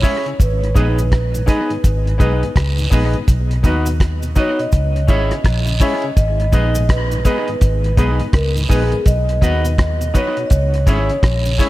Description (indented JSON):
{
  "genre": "roots reggae",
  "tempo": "83 BPM",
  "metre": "4/4",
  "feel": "swing 62% on 16ths",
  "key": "unclear",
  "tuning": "A4 = 440 Hz",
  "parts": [
    { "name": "vibraphone with soft mallets", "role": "melody", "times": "0.0-11.7 s", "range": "G#4 to D#5", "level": "-24 LUFS", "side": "right 1 dB", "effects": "dub echo" },
    { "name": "clean electric guitar", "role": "accompaniment", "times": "0.0-11.7 s", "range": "D#4 to E5", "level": "-24 LUFS", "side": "right 3 dB", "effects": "dub echo" },
    { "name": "mellow tonewheel organ", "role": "accompaniment", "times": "0.0-11.7 s", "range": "G#2 to E4", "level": "-28 LUFS", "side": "left 1 dB", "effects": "slow rotary speaker, tape echo" },
    { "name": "clear grand piano", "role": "stabs", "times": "0.0-11.7 s", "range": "B3 to C#5", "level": "-26 LUFS", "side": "left 6 dB", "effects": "none" },
    { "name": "cloth-damped thuddy drum kit", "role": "drums", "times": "0.0-11.7 s", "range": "hi-hat, kick drum, rim click", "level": "-16 LUFS", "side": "equal", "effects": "none" },
    { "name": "cabasa and guiro", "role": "percussion", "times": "0.0-11.7 s", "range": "none", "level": "-30 LUFS", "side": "right 4 dB", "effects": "none" },
    { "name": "vintage muted fingered electric bass", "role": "bass", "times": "0.4-11.6 s", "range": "G#1 to D#2", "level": "-17 LUFS", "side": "equal", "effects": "none" }
  ],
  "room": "small room ambience",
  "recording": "none",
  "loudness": "-14 LUFS",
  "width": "side -17 dB against mid",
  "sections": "0.0-11.7 A section",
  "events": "none",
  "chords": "0.4 G#m; 3.3 B; 4.7 C#m; 6.2 G#m; 9.1 B; 10.5 C#m",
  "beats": "| 0.40 1.12 1.84 2.56 | 3.29 4.01 4.73 5.45 | 6.18 6.90 7.62 8.34 | 9.06 9.79 10.51 11.23"
}